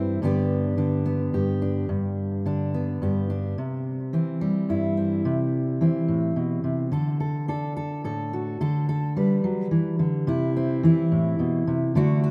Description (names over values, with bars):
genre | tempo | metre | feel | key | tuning
folk | 72 BPM (dotted quarters) | 6/8 | straight | G major | A4 = 440 Hz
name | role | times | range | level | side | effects
fingerpicked steel-string acoustic guitar | solo | 0.0-12.3 s | G2 to B4 | -25 LUFS | equal | analog delay
room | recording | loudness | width
moderate lush hall reverb, RT60 2.9 s | rough home demo mix | -25 LUFS | mono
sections
0.0-6.9 A section; 6.9-12.3 B section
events
none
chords
0.2 G; 3.6 C; 6.9 D; 8.6 Gsus2/D; 10.3 C6